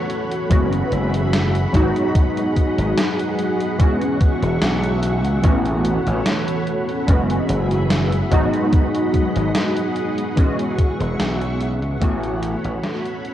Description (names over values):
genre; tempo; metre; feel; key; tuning
vaporwave; 73 BPM; 4/4; swing 53% on 16ths; unclear; A4 = 440 Hz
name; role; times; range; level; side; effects
warbly lo-fi synth keys; accompaniment; 0.0-13.3 s; E3 to F#4; -21 LUFS; equal; ensemble chorus, tape echo
soft string machine; sustained chords; 0.0-13.3 s; G#4 to C#6; -27 LUFS; equal; ensemble chorus, vintage 12-bit sampler grit
gated 80s digital drum machine; drums; 0.1-13.3 s; hi-hat, snare drum; -25 LUFS; equal; gated reverb, gated reverb snare, small room ambience
gritty slap bass; bass; 0.5-12.8 s; E1 to C#2; -21 LUFS; equal; overdrive, tube saturation
electronic kick drum; drums; 0.5-12.2 s; none; -16 LUFS; equal; small room ambience
room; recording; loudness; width
light reverb, digital ambience; worn, warbling old tape, cassette tape, warbly pitch drift; -17 LUFS; side -12 dB against mid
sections
0.0-13.3 A section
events
fade-out 9.8-13.3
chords
0.0 A69; 0.5 F#9sus4; 1.7 G#m7; 3.8 E69; 5.4 A69; 7.1 F#9sus4; 8.3 G#m7; 10.4 E69; 12.0 A69